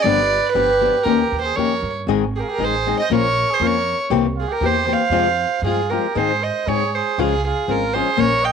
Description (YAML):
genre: mexican folk, mariachi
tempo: 118 BPM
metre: 2/4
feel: rubato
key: F minor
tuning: A4 = 440 Hz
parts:
  - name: rich violin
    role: melody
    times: 0.0-8.5 s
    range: Ab4 to G5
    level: -20 LUFS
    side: right 2 dB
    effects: none
  - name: mellow trumpet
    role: second line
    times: 0.0-8.5 s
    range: F4 to Eb5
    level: -25 LUFS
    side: right 14 dB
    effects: none
  - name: flamenco guitar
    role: accompaniment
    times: 0.0-8.3 s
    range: F2 to Ab4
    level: -21 LUFS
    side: left 11 dB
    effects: none
  - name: upright bass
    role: bass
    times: 0.0-8.5 s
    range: G1 to Ab2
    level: -26 LUFS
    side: right 2 dB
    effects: none
room: moderate spring reverb, RT60 1.6 s, studio reverb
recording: 1960s-style stereo with parts hard left and right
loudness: -16 LUFS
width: side -6 dB against mid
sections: 0.0-6.1 A section; 6.1-8.5 B section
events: none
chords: 0.0 G7; 1.0 Eb7; 2.1 Ab; 3.1 Bbm; 4.1 C7; 5.1 Fm; 6.1 Ab; 7.2 Db